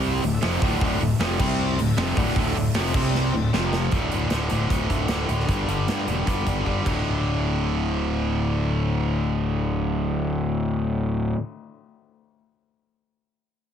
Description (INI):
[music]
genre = hard rock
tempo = 153 BPM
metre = 4/4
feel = straight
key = unclear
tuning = A4 = 440 Hz
[part]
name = brassy analog pad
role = sustained chords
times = 0.0-3.9 s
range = F3 to E5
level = -36 LUFS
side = right 2 dB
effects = none
[part]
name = cranked stack guitar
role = riff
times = 0.0-11.4 s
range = D2 to C4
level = -26 LUFS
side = left 8 dB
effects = overdrive, spring reverb
[part]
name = distorted electric guitar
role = riff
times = 0.0-11.4 s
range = D2 to C4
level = -27 LUFS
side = right 9 dB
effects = overdrive
[part]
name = overdriven semi-hollow guitar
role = riff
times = 0.0-3.9 s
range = D2 to C4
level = -30 LUFS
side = equal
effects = none
[part]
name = fuzz fingered electric bass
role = bass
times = 0.0-11.3 s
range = D1 to G2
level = -27 LUFS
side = equal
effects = overdrive
[part]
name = big rock drum kit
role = drums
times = 0.0-7.0 s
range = crash cymbal, hi-hat, kick drum, snare drum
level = -27 LUFS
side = equal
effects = none
[sound]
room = light reverb, small room ambience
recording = heavily compressed radio sound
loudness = -21 LUFS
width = side -8 dB against mid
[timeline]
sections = 0.0-3.9 A section; 3.9-7.1 B section; 7.1-10.2 C section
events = drum fill 3.1-3.9, 6.7-7.1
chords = 0.2 D5; 1.4 C5; 1.8 D5; 2.9 C5; 3.3 D5; 3.5 F5; 3.9 D5; 5.5 G5; 6.9 D5